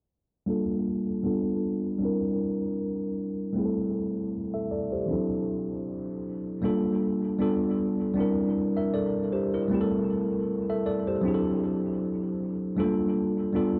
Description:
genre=hip hop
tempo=78 BPM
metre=4/4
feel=swing 55% on 16ths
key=G dorian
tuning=A4 = 439 Hz
part: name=tine electric piano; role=accompaniment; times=0.5-13.8 s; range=E3 to E5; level=-28 LUFS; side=equal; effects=cassette tape, dub echo
room=moderate spring reverb, RT60 1.3 s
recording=echo-heavy mix, cassette tape, low-pass filter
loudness=-28 LUFS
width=mono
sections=0.5-6.6 A section; 6.6-13.8 B section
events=filter sweep 0.5-6.6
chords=0.5 Gm7; 1.2 G7; 2.0 C7; 3.5 Am7; 5.1 D7; 6.6 Gm7; 7.4 G7; 8.2 C7; 11.2 D7; 12.8 Gm7

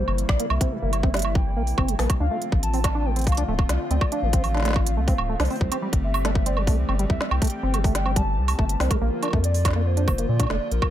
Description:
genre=IDM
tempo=141 BPM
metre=4/4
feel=straight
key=unclear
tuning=A4 = 440 Hz
part: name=warbly nostalgic lead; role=melody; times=0.0-10.9 s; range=Bb4 to A5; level=-31 LUFS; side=left 1 dB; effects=wide subtle chorus, ping-pong delay
part: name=hollow soft pad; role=sustained chords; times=0.0-10.9 s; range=C3 to G4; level=-32 LUFS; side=equal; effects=chorus, vintage 12-bit sampler grit
part: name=deep acid bass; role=arpeggios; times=0.0-10.6 s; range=G3 to D4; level=-30 LUFS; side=right 2 dB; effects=analog chorus, vintage 12-bit sampler grit, tape echo
part: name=round analog bass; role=bass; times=0.0-10.8 s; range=D1 to Bb2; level=-24 LUFS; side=equal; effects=none
part: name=organic electronic drum kit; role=drums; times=0.1-10.9 s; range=hi-hat, snare drum, woodblock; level=-28 LUFS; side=right 3 dB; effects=overdrive
part: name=electronic kick drum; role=drums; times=0.3-10.9 s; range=none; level=-22 LUFS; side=equal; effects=overdrive
room=little or no reverb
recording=none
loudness=-20 LUFS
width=side -12 dB against mid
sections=0.0-10.9 A section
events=none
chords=0.0 C7; 2.2 Dm7; 5.6 Am7; 9.0 Bb

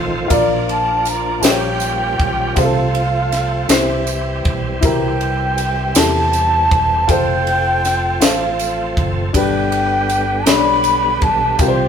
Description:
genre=slow gospel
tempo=53 BPM (dotted quarters)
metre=6/8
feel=straight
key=F major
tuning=A4 = 440 Hz
part: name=bright bass bansuri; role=melody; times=0.0-11.9 s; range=E5 to B5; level=-18 LUFS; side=equal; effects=none
part: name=dark baby grand piano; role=accompaniment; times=0.0-11.9 s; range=G2 to G5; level=-20 LUFS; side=left 3 dB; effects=none
part: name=bright tonewheel organ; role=sustained chords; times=0.0-11.9 s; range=D3 to G4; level=-24 LUFS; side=right 2 dB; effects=fast rotary speaker, overdrive, chorus vibrato
part: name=fingered electric bass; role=bass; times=0.0-11.9 s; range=E1 to E2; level=-23 LUFS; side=right 1 dB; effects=none
part: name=crisp fusion drum kit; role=drums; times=0.3-11.8 s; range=kick drum, ride cymbal, snare drum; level=-20 LUFS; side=equal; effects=none
part: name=tambourine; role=percussion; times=0.3-11.9 s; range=none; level=-25 LUFS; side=right 7 dB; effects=none
room=moderate studio reverb, RT60 0.6 s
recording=band playing live in one room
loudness=-14 LUFS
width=side -7 dB against mid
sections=0.0-11.9 A section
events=none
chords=0.3 Bb; 1.4 Bbm6; 2.6 F/C; 3.7 C; 7.1 F; 9.3 G

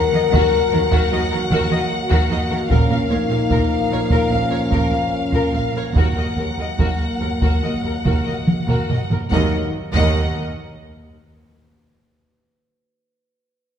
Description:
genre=cinematic, epic orchestral film score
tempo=70-76 BPM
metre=4/4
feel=straight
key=Eb minor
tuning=A4 = 440 Hz
part: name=warm studio violin section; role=melody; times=0.0-10.4 s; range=F5 to Gb5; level=-27 LUFS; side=left 4 dB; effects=none
part: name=warm symphonic viola section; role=accompaniment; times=0.0-10.4 s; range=Bb4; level=-29 LUFS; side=right 1 dB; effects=none
part: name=dark trombone section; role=sustained chords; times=0.0-9.7 s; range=F3 to Bb3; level=-26 LUFS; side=right 2 dB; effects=none
part: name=mellow French horn section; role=sustained chords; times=0.0-9.7 s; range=Bb3 to Bb4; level=-23 LUFS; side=left 6 dB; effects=none
part: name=warm symphonic violin section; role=second line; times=0.1-10.4 s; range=Gb4 to F5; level=-27 LUFS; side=left 2 dB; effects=none
part: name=rich symphonic cello section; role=bass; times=0.1-10.4 s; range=Eb2 to Eb3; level=-25 LUFS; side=right 3 dB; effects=none
part: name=clear symphonic double bass section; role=bass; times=0.3-10.4 s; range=Bb1 to Eb2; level=-26 LUFS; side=right 3 dB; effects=none
part: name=taiko ensemble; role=drums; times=0.3-11.6 s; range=none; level=-21 LUFS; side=equal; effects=none
part: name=timpani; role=percussion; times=9.3-10.3 s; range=Eb3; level=-33 LUFS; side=left 2 dB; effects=none
room=wet recital hall reverb, RT60 1.7 s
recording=recorded in a church or concert hall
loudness=-16 LUFS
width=side -9 dB against mid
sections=0.0-9.3 A section; 9.3-12.6 B section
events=drum fill 8.5-9.3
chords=0.0 Ebm; 2.7 Bbm; 6.0 Ebm

